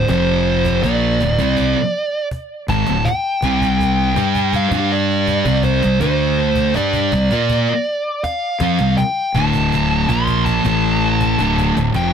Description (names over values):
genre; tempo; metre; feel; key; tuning
stoner and doom metal; 81 BPM; 4/4; straight; D minor; A4 = 441 Hz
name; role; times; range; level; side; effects
fuzz lead guitar; melody; 0.0-12.1 s; C5 to C6; -20 LUFS; right 1 dB; distortion, tape echo
thick fuzz guitar; riff; 0.0-12.1 s; D2 to Bb4; -20 LUFS; left 10 dB; distortion
thick fuzz guitar; riff; 0.0-12.1 s; D2 to Bb4; -20 LUFS; right 12 dB; distortion
fuzz fingered electric bass; bass; 0.0-12.1 s; D1 to Bb2; -21 LUFS; equal; overdrive
cajon; drums; 0.1-12.1 s; none; -26 LUFS; equal; none
room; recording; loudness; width
light reverb; none; -14 LUFS; side -7 dB against mid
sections
0.0-12.1 A section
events
none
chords
0.1 F5; 0.8 Dm; 3.4 C5; 4.7 G5; 5.5 C5; 6.0 D5; 6.8 C5; 9.4 Dm; 10.6 A5; 11.4 D5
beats
| 0.10 0.84 1.58 2.32 | 3.06 3.80 4.54 5.28 | 6.02 6.76 7.50 8.24 | 8.98 9.72 10.46 11.20 | 11.94